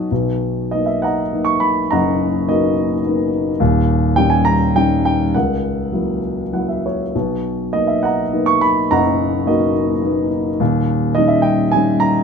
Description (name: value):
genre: classical, lyrical solo piano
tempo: 94-109 BPM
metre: 3/4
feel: rubato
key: B major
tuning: A4 = 440 Hz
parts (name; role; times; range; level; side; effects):
- dark concert grand piano; solo; 0.0-12.2 s; D#1 to C#6; -15 LUFS; equal; none
room: light reverb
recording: minimal, uncompressed stereo recording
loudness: -15 LUFS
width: side -6 dB against mid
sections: 0.1-12.2 A section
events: grand piano fill 6.2-7.1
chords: 0.1 Bmaj7; 3.6 D#7; 5.3 F#7/C#; 7.1 Bmaj7; 10.6 D#7